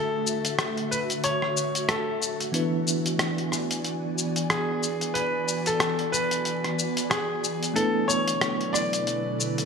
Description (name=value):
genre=sunset chillout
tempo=92 BPM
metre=4/4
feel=swing 58% on 16ths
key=unclear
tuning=A4 = 440 Hz
part: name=bright baby grand piano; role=melody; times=0.0-9.7 s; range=G#4 to D5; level=-28 LUFS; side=left 2 dB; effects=ping-pong delay
part: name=bell-like tine electric piano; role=accompaniment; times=0.0-9.7 s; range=E3 to B4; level=-31 LUFS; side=right 2 dB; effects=medium stereo tremolo, auto-pan, digital delay
part: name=ethereal airy pad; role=sustained chords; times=0.0-9.7 s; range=B2 to G#5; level=-31 LUFS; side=right 1 dB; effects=ensemble chorus, built-in reverb
part: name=dusty soul sampler-style drum kit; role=drums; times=0.3-9.7 s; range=hi-hat, rim click, shaker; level=-28 LUFS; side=left 2 dB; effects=none
room=wet plate reverb, RT60 1.8 s, digital ambience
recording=bright 1980s-style digital production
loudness=-24 LUFS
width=side -5 dB against mid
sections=0.0-9.7 A section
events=none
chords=0.0 Dmaj7; 2.5 E7; 7.8 Bm11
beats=0.58 1.24 1.89 | 2.54 3.19 3.85 4.50 | 5.15 5.80 6.46 7.11 | 7.76 8.41 9.06